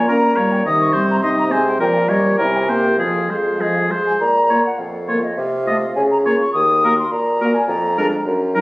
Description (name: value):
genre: quick classical-period movement for wind quintet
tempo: 103 BPM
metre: 2/4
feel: rubato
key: F minor, Bb minor from 4.2 s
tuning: A4 = 440 Hz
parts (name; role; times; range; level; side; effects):
- concert flute; melody; 0.0-8.2 s; Db5 to Eb6; -20 LUFS; left 1 dB; none
- clear oboe; second line; 0.0-8.6 s; Ab4 to Eb5; -21 LUFS; left 1 dB; none
- mellow French horn; accompaniment; 0.0-8.6 s; Eb3 to C4; -22 LUFS; equal; none
- warm clarinet; accompaniment; 0.0-8.6 s; Bb3 to Ab4; -26 LUFS; right 1 dB; none
- warm bassoon; bass; 0.0-8.6 s; Eb2 to Db3; -20 LUFS; equal; none
room: moderate recital hall reverb, RT60 1.5 s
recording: recorded on a phone in the room, studio reverb, compression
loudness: -14 LUFS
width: side -22 dB against mid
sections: 0.0-4.2 A section; 4.2-8.6 B section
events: none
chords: 0.1 Gdim/Bb; 0.7 Cm; 1.2 Ab/C; 1.8 Gm7b5/Bb; 2.4 C7; 3.0 Fm; 4.2 Bb5; 5.4 F/C; 6.0 Bbm/Db; 6.5 Ebm; 7.7 Bb7/F